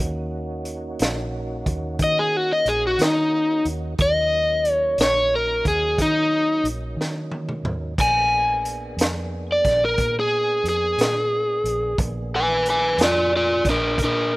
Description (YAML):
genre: slow blues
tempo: 60 BPM (dotted quarters)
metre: 12/8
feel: straight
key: Eb minor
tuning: A4 = 440 Hz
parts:
  - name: mellow tonewheel organ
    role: sustained chords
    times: 0.0-14.4 s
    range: Gb3 to Ab4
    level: -34 LUFS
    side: right 1 dB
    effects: slow rotary speaker, overdrive, chorus vibrato
  - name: vintage muted fingered electric bass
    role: bass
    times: 0.0-14.4 s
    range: Bb1 to Eb3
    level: -30 LUFS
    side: right 1 dB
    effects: none
  - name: crunchy breakbeat drum kit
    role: drums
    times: 0.7-14.1 s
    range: crash cymbal, hi-hat, kick drum, snare drum, toms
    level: -24 LUFS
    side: equal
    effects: none
  - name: overdriven semi-hollow guitar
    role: melody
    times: 2.0-14.3 s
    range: D4 to Ab5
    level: -19 LUFS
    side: equal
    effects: none
room: small room ambience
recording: rough home demo mix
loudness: -19 LUFS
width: side -20 dB against mid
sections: 0.0-14.4 A section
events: overdriven electric guitar solo 0.0-14.4; drum fill 7.0-8.0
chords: 0.0 Ebm7; 8.0 Bb7b9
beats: 0.99 1.99 2.99 | 3.99 4.99 5.99 6.99 | 7.99 8.98 9.98 10.98 | 11.98 12.98 13.98